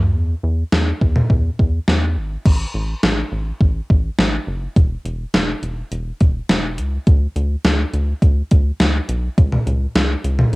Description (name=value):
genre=synth-pop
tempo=104 BPM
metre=4/4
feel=straight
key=unclear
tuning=A4 = 438 Hz
part: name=rubbery square bass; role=bass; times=0.0-10.6 s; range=E1 to E2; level=-20 LUFS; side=equal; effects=none
part: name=gated 80s digital drum machine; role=drums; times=0.7-10.6 s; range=crash cymbal, hi-hat, kick drum, snare drum, toms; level=-16 LUFS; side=equal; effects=gated reverb, gated reverb snare, overdrive, cassette tape
room=light reverb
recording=home recording on cassette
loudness=-16 LUFS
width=side -22 dB against mid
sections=0.0-2.5 A section; 2.5-10.6 B section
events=none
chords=none